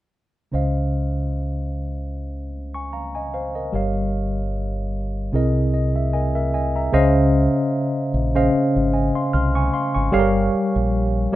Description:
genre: R&B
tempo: 75 BPM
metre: 4/4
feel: swing 54% on 16ths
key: Db major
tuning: A4 = 440 Hz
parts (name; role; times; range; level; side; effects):
- tine electric piano; accompaniment; 0.5-11.4 s; C3 to F6; -20 LUFS; equal; medium stereo tremolo
- deep dub fingered electric bass; bass; 0.5-11.3 s; G1 to Db2; -23 LUFS; equal; none
room: moderate small room reverb, RT60 0.5 s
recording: rough home demo mix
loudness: -19 LUFS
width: side -15 dB against mid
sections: 0.5-6.9 A section; 6.9-11.4 B section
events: tine electric piano fill 5.3-6.9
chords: 0.5 Dbmaj9; 3.7 Gm7b5; 5.3 C7alt; 6.9 Dbmaj9; 10.1 Gm7b5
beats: | 0.52 1.32 2.12 2.92 | 3.72 4.52 5.32 6.12 | 6.92 7.72 8.52 9.32 | 10.12 10.92

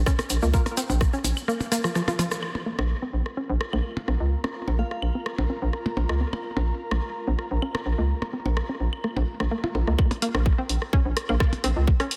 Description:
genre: minimal techno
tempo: 127 BPM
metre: 4/4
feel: straight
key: Bb minor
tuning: A4 = 439 Hz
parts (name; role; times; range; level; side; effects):
- hollow knocking FM bass; bass; 0.0-11.9 s; Bb1 to Db2; -26 LUFS; equal; sidechain pumping
- hollow square pluck; riff; 0.1-12.1 s; F3 to Bb4; -33 LUFS; equal; chorus, sidechain pumping, analog delay
- electronic kick drum; drums; 0.1-1.1, 10.0-12.0 s; none; -24 LUFS; equal; none
- garage drum kit; drums; 0.1-2.4, 10.1-12.2 s; hi-hat, rim click; -34 LUFS; equal; none
- electronic claves, rim click and percussion blips; percussion; 0.1-12.1 s; none; -34 LUFS; equal; analog delay
- tube shaker; percussion; 0.1-2.4 s; none; -37 LUFS; equal; none
- wavetable chord stab; stabs; 0.5-0.6 s; Bb3 to Bb4; -38 LUFS; equal; analog delay
- ethereal airy pad; texture; 3.2-10.0 s; F4 to Bb5; -40 LUFS; equal; ensemble chorus, built-in reverb, sidechain pumping
- glassy synth bell; melody; 4.8-5.0 s; F5; -41 LUFS; equal; chorus, tremolo, analog delay
room: moderate lush hall reverb, RT60 2.2 s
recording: dreamy mix soaked in reverb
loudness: -26 LUFS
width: mono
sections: 0.0-2.4 A section; 2.4-10.0 B section; 10.0-12.2 C section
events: drum fill 1.7-2.4; band accent 2.3; drop 10.0-12.2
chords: 0.0 Bb5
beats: 0.06 | 0.54 1.01 1.48 1.95 | 2.43 2.90 3.37 3.84 | 4.32 4.79 5.26 5.73 | 6.21 6.68 7.15 7.62 | 8.10 8.57 9.04 9.51 | 9.98 10.46 10.93 11.40 | 11.88

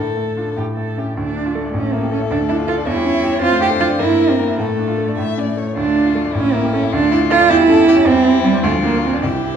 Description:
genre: quick classical-period movement for piano trio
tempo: 97-108 BPM (dotted quarters)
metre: 6/8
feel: rubato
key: D minor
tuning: A4 = 441 Hz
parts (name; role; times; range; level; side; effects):
- warm violin; melody; 0.0-9.6 s; E4 to E5; -23 LUFS; left 10 dB; none
- warm cello; second line; 0.0-9.6 s; G3 to A4; -16 LUFS; right 4 dB; none
- bright baby grand piano; accompaniment; 0.0-9.6 s; A1 to E5; -20 LUFS; left 1 dB; none
room: wet recital hall reverb, RT60 1.4 s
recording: dark, warm production, nothing above 10.3 kHz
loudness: -14 LUFS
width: side -8 dB against mid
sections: 0.0-1.2 A section; 1.2-9.6 B section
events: none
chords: 0.0 Dm/A; 0.6 A; 1.2 Dm; 1.7 A5; 2.3 Dm; 2.9 C#dim/E; 3.4 Dm/F; 4.0 Edim/G; 4.6 Dm/A; 5.2 A; 5.8 Dm; 6.3 A5; 6.9 Dm; 7.5 C#dim/E; 8.1 C/E; 8.6 Bb/D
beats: 0.58 | 1.18 1.75 | 2.31 2.87 | 3.42 4.00 | 4.58 5.18 | 5.77 6.35 | 6.93 7.50 | 8.06 8.63 | 9.23

